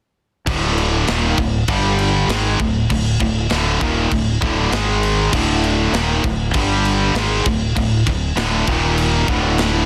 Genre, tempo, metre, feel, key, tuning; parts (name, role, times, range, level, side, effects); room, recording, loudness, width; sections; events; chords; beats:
heavy metal; 99 BPM; 4/4; straight; A4 = 440 Hz
biting overdriven guitar; riff; 0.5-9.9 s; D2 to G#3; -26 LUFS; equal
high-gain distorted guitar; riff; 0.5-9.9 s; D2 to G#3; -24 LUFS; equal; distortion
tight distorted guitar; riff; 0.5-9.9 s; D2 to G#3; -25 LUFS; equal; distortion
growling fingered electric bass; bass; 0.5-9.8 s; D1 to G#1; -24 LUFS; equal; overdrive
tight metal drum kit; drums; 0.5-9.7 s; crash cymbal, kick drum, snare drum; -25 LUFS; equal; soft clipping on kick
small room ambience; dense, heavily limited modern master; -18 LUFS; mono
0.5-9.9 A section
0.5 D5; 1.7 G5; 2.3 D5; 4.7 G#5; 5.3 D5; 6.5 G5; 7.2 D5; 8.7 Eb5; 9.3 D5
| 0.48 1.08 1.69 2.30 | 2.91 3.51 4.12 4.73 | 5.34 5.94 6.55 7.16 | 7.76 8.37 8.98 9.58